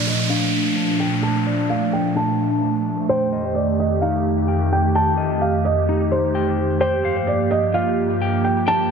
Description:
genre	hip hop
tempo	129 BPM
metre	4/4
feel	half-time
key	unclear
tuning	A4 = 439 Hz
part	felt-muted upright piano	melody	0.0-8.9 s	C5 to A5	-23 LUFS	right 1 dB	low-pass filter, ping-pong delay
part	airy breathy pad	sustained chords	0.0-8.9 s	F2 to G4	-20 LUFS	right 1 dB	chorus, low-pass filter
part	electric guitar at the edge of break-up	arpeggios	0.0-8.9 s	D4 to A5	-27 LUFS	left 7 dB	low-pass filter, ping-pong delay
part	downlifter	sound effects	0.0-3.1 s	none	-26 LUFS	right 1 dB	none
room	light reverb, digital ambience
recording	dense, heavily limited modern master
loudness	-17 LUFS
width	side -6 dB against mid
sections	0.0-8.9 A section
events	filter sweep 0.0-8.9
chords	0.0 Bbmaj7; 3.1 F9; 6.8 Gm7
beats	0.30 0.77 | 1.23 1.70 2.16 2.63 | 3.09 3.56 4.02 4.49 | 4.95 5.42 5.88 6.35 | 6.81 7.28 7.74 8.21 | 8.67

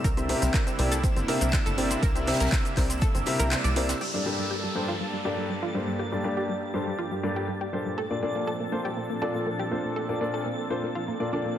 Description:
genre	progressive house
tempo	121 BPM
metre	4/4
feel	straight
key	G dorian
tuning	A4 = 440 Hz
part	supersaw pad	sustained chords	0.0-11.6 s	G2 to A4	-33 LUFS	right 2 dB	sidechain pumping, low-pass filter
part	analog pluck	arpeggios	0.0-11.5 s	G3 to D5	-33 LUFS	right 1 dB	chorus, sidechain pumping, tape echo
part	warm baby grand piano	stabs	0.0-11.6 s	G2 to E5	-30 LUFS	left 2 dB	sidechain pumping, low-pass filter, tape echo
part	tight sequencer bass	bass	0.0-3.9 s	G1 to C2	-28 LUFS	equal	sidechain pumping
part	deep house drum kit	drums	0.0-4.1 s	crash cymbal, handclaps, hi-hat, shaker	-32 LUFS	equal	overdrive, sidechain pumping on hats, studio reverb, sidechain pumping on perc, sidechain pumping on cymbals
part	electronic kick drum	drums	0.0-3.1 s	none	-25 LUFS	equal	overdrive, studio reverb
part	jazz brush drum kit	drums	0.0-4.0 s	hi-hat, snare drum	-39 LUFS	right 2 dB	none
part	twinkling granular texture	texture	0.0-11.6 s	E6 to A6	-39 LUFS	right 1 dB	built-in reverb, sidechain pumping
part	downlifter	sound effects	4.0-8.0 s	none	-37 LUFS	right 1 dB	none
room	moderate scoring stage reverb, RT60 1.6 s, digital ambience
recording	none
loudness	-25 LUFS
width	side -10 dB against mid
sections	0.0-4.0 A section; 4.0-11.6 B section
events	kick drops out 3.5-4.0; band accent 3.5; filter sweep on supersaw synth 4.0-11.6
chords	0.0 C7; 4.0 Gmadd9; 8.0 Bbmaj7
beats	| 0.04 0.54 1.04 1.53 | 2.03 2.52 3.02 3.52 | 4.01 4.51 5.00 5.50 | 5.99 6.49 6.99 7.48 | 7.98 8.47 8.97 9.46 | 9.96 10.46 10.95 11.45

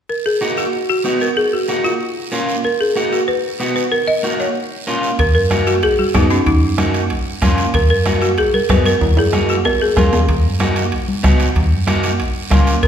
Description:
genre	latin, cumbia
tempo	188 BPM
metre	4/4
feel	straight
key	Eb minor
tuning	A4 = 443 Hz
part	folk marimba with hard mallets	melody	0.1-10.2, 12.8-12.9 s	Db4 to Eb5	-17 LUFS	left 1 dB	none
part	guiro	percussion	0.1-12.9 s	none	-30 LUFS	right 5 dB	none
part	electric guitar at the edge of break-up	accompaniment	0.4-12.7 s	Bb3 to Gb4	-20 LUFS	right 1 dB	none
part	metallic FM bass	bass	5.2-12.9 s	Bb1 to Gb2	-18 LUFS	equal	none
part	bombo	percussion	5.2-12.9 s	none	-20 LUFS	right 1 dB	none
part	timbales	percussion	5.2-12.9 s	none	-27 LUFS	right 3 dB	none
part	congas	percussion	5.5-12.7 s	none	-23 LUFS	left 2 dB	none
room	wet scoring stage reverb, RT60 1.6 s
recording	recorded in a church or concert hall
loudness	-14 LUFS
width	side -8 dB against mid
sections	0.1-5.2 A section; 5.2-12.9 B section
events	drum fill 9.0-10.3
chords	0.1 Ebm; 0.7 B; 1.4 Ebm; 2.0 Bbm; 2.6 Ebm; 3.3 B; 3.9 Ebm; 4.6 Bbm; 5.2 Ebm; 5.8 B; 6.5 Ebm; 7.1 Bbm; 7.7 Ebm; 8.4 B; 9.0 Ebm; 9.6 Bbm; 10.3 Ebm; 10.9 B; 11.6 Ebm; 12.2 Bbm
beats	| 0.10 0.42 0.73 1.05 | 1.37 1.69 2.01 2.33 | 2.65 2.96 3.28 3.60 | 3.92 4.24 4.56 4.88 | 5.19 5.51 5.83 6.15 | 6.47 6.79 7.10 7.42 | 7.74 8.06 8.38 8.69 | 9.01 9.33 9.65 9.97 | 10.29 10.60 10.92 11.24 | 11.56 11.88 12.20 12.51 | 12.83

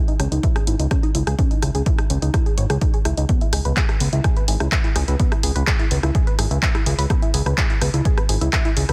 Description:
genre	melodic techno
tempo	126 BPM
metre	4/4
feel	straight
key	unclear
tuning	A4 = 440 Hz
part	tight sequenced synth	arpeggios	0.0-8.9 s	B3 to E5	-30 LUFS	equal	chorus, phaser, sidechain pumping, digital delay
part	punchy analog drum machine	drums	0.1-8.9 s	handclaps, hi-hat, rim click	-28 LUFS	equal	sidechain pumping on hats
part	fat analog bass	bass	0.2-8.9 s	G#1 to C#2	-23 LUFS	equal	sidechain pumping
part	electronic kick drum	drums	0.4-8.6 s	none	-22 LUFS	equal	none
room	digital ambience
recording	dense, heavily limited modern master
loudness	-19 LUFS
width	mono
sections	0.0-8.9 A section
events	none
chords	0.0 C#madd9; 3.3 E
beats	0.43 0.91 | 1.39 1.86 2.34 2.81 | 3.29 3.77 4.24 4.72 | 5.20 5.67 6.15 6.62 | 7.10 7.58 8.05 8.53

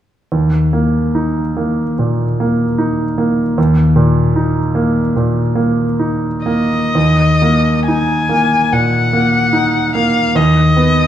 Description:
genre	classical, romantic duo for violin and grand piano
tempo	72 BPM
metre	4/4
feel	uneven beats, rubato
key	Eb minor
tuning	A4 = 440 Hz
part	bright grand piano	accompaniment	0.3-11.1 s	Eb2 to Eb4	-13 LUFS	equal	none
part	rich violin	melody	6.5-11.1 s	Eb5 to Ab5	-15 LUFS	left 3 dB	none
room	wet scoring stage reverb, RT60 1.6 s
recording	dark, warm production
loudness	-12 LUFS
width	side -11 dB against mid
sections	0.3-7.0 A section; 7.0-11.1 B section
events	none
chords	0.3 Eb5; 10.4 Db7sus2/Eb (rootless)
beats	| 0.31 1.15 1.97 2.78 | 3.57 4.36 5.16 6.01 | 6.95 7.89 8.73 9.54 | 10.37

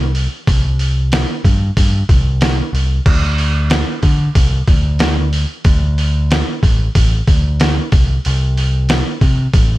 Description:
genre	classic rock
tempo	93 BPM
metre	4/4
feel	straight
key	unclear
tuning	A4 = 440 Hz
part	picked electric bass	bass	0.0-9.8 s	A1 to D3	-15 LUFS	equal	none
part	trip hop sampler-style drum kit	drums	0.1-9.7 s	crash cymbal, hi-hat, kick drum, snare drum	-14 LUFS	equal	none
room	little or no reverb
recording	none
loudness	-12 LUFS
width	side -17 dB against mid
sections	0.0-9.8 A section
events	none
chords	none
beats	| 0.47 1.12 1.77 2.41 | 3.06 3.71 4.36 5.00 | 5.65 6.30 6.95 7.59 | 8.24 8.89 9.53

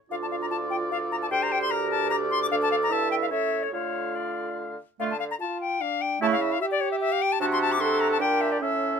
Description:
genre	quick classical-period movement for wind quintet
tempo	149 BPM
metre	3/4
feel	rubato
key	D minor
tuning	A4 = 440 Hz
part	bright silver concert flute	melody	0.1-9.0 s	C#5 to D6	-27 LUFS	left 5 dB	none
part	warm oboe	second line	0.1-9.0 s	E4 to F5	-30 LUFS	equal	none
part	warm French horn	accompaniment	0.1-9.0 s	A3 to Bb4	-31 LUFS	right 1 dB	none
part	warm clarinet	accompaniment	0.1-9.0 s	A3 to A4	-31 LUFS	right 7 dB	none
part	warm bassoon	bass	0.1-9.0 s	D2 to D3	-32 LUFS	right 3 dB	none
room	light reverb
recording	minimal, uncompressed stereo recording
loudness	-23 LUFS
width	side -6 dB against mid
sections	0.0-5.0 A section; 5.0-9.0 A section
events	none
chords	0.1 Dm; 1.3 Gm/D; 2.5 D5; 2.9 Fmaj9/G (rootless); 3.3 A; 3.7 Dm; 6.2 A/C# (rootless); 7.4 D7/C; 8.2 Gm/Bb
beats	| 0.11 0.51 0.92 | 1.32 1.72 2.12 | 2.51 2.91 3.31 | 3.73 4.15 4.58 | 5.00 5.41 5.81 | 6.22 6.61 7.01 | 7.41 7.80 8.21 | 8.62

